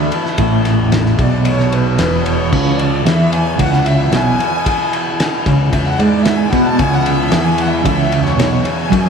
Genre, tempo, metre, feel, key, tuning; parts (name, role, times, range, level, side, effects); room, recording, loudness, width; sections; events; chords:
psychedelic rock; 112 BPM; 4/4; straight; A4 = 444 Hz
mellow electric guitar; riff; 0.0-9.1 s; E2 to B3; -15 LUFS; right 1 dB; tremolo, double-tracked left and right
fuzz picked electric bass; bass; 0.0-9.1 s; E1 to B2; -21 LUFS; left 1 dB; overdrive
tanpura; drone; 0.0-9.1 s; E2 to E3; -22 LUFS; left 1 dB
cloth-damped thuddy drum kit; drums; 0.1-9.0 s; crash cymbal, kick drum, ride cymbal, snare drum; -20 LUFS; left 1 dB
clear symphonic string section; sustained chords; 1.2-9.1 s; B4 to A5; -20 LUFS; equal
moderate huge ambient reverb, RT60 7.2 s; dreamy mix soaked in reverb; -12 LUFS; side -6 dB against mid
0.0-9.1 A section
string section solo 0.0-9.1
0.0 Esus4; 2.5 C#m7